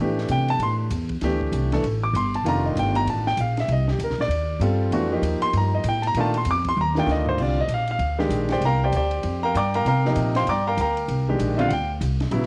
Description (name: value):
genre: modal jazz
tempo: 195 BPM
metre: 4/4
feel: swing 62% on 8ths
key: C minor from 7.4 s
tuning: A4 = 441 Hz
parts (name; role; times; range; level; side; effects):
- warm baby grand piano; accompaniment; 0.0-12.5 s; C3 to D6; -25 LUFS; equal; none
- upright bass; bass; 0.0-12.5 s; F1 to C3; -26 LUFS; equal; none
- compact cocktail drum kit; drums; 0.2-12.5 s; crash cymbal, hi-hat, kick drum, ride cymbal, snare drum, toms; -38 LUFS; equal; cassette tape
room: light reverb, small room ambience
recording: home recording on cassette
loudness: -23 LUFS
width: mono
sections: 0.0-7.4 A section; 7.4-12.5 A section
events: drum fill 6.8-7.4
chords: 0.0 D9sus4; 2.5 F9sus4; 7.4 C9sus4